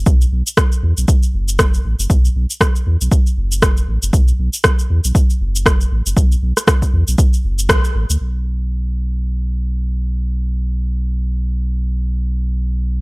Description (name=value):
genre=afro house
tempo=118 BPM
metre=4/4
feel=swing 58% on 16ths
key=unclear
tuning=A4 = 439 Hz
part: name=warm sub bass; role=bass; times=0.0-13.0 s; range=F#1 to E2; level=-17 LUFS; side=equal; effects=tube saturation, sidechain pumping
part: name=electronic kick drum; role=drums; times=0.1-7.8 s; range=none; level=-14 LUFS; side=equal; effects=none
part: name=electronic shaker and rim click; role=drums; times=0.1-8.2 s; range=none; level=-18 LUFS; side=equal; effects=none
room=little or no reverb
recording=dry, gritty hardware recording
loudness=-14 LUFS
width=side -27 dB against mid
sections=0.0-8.2 A section; 8.2-13.0 B section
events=band accent 7.7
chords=none